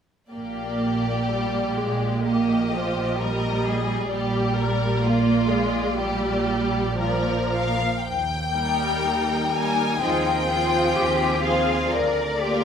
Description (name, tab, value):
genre	classical, slow romantic movement for symphony orchestra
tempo	62 BPM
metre	4/4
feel	uneven beats, rubato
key	Eb major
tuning	A4 = 439 Hz
part	rich studio violin section	melody	0.3-12.6 s	D5 to Ab5	-27 LUFS	left 5 dB	none
part	clear studio violin section	second line	0.3-12.6 s	Eb4 to Bb4	-29 LUFS	left 2 dB	none
part	rich studio viola section	accompaniment	0.3-12.6 s	F3 to C4	-25 LUFS	right 2 dB	none
part	rich studio cello section	bass	0.3-12.6 s	Bb2 to Bb4	-28 LUFS	right 2 dB	none
part	rich studio double bass section	bass	0.3-12.6 s	Bb1 to Eb2	-29 LUFS	right 2 dB	none
room	wet scoring stage reverb, RT60 1.8 s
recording	none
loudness	-20 LUFS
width	side -7 dB against mid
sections	0.3-8.1 A section; 8.1-12.6 B section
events	none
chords	0.3 Eb/Bb; 8.1 Eb; 10.0 Fm7/Eb; 11.9 Bb7/D